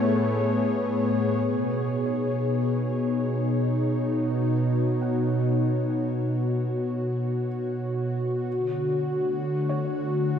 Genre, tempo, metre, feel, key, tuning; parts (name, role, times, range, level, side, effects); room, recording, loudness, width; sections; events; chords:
ambient; free time; B mixolydian; A4 = 439 Hz
breathy flute-like synth lead; melody; 0.0-0.5 s; C#5; -39 LUFS; equal
warm analog pad; sustained chords; 0.0-10.4 s; A2 to C#5; -23 LUFS; equal; chorus
felt-muted upright piano; arpeggios; 2.1-10.4 s; C#5 to F#5; -43 LUFS; equal; ping-pong delay
wet lush hall reverb, RT60 3.1 s; dreamy mix soaked in reverb, cassette tape; -23 LUFS; side -8 dB against mid
0.0-1.5 A section; 1.5-10.4 B section
fade-in on felt piano 1.5-10.4
0.0 Amaj7; 1.5 Badd9; 8.5 Dmaj7